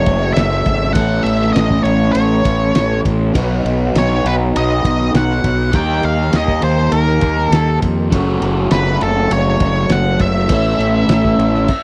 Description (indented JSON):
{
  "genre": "psychedelic rock",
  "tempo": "101 BPM",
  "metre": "4/4",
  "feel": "straight",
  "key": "B mixolydian",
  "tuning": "A4 = 440 Hz",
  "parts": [
    { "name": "octave-fuzz lead guitar", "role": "melody", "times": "0.0-11.8 s", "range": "A4 to G5", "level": "-22 LUFS", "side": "equal", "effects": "distortion, slapback echo" },
    { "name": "combo organ", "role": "sustained chords", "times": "0.0-11.7 s", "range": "F#3 to B4", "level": "-28 LUFS", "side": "equal", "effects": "none" },
    { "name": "crunchy overdriven guitar", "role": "riff", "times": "0.0-11.7 s", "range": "F#2 to A4", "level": "-19 LUFS", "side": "equal", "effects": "phaser" },
    { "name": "fuzz fingered electric bass", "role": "bass", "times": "0.0-11.7 s", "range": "F#1 to E#2", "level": "-20 LUFS", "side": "equal", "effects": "overdrive" },
    { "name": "cloth-damped thuddy drum kit", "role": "drums", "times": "0.1-11.8 s", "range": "crash cymbal, kick drum, ride cymbal, snare drum", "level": "-22 LUFS", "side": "equal", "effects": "none" }
  ],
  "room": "little or no reverb",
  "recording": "dry, close 1970s-style studio recording",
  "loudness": "-15 LUFS",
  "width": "mono",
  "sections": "0.0-11.8 A section",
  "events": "none",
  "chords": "0.0 F#m; 1.0 Aadd9; 3.4 B; 5.7 D#; 8.1 F#m; 10.5 Aadd9"
}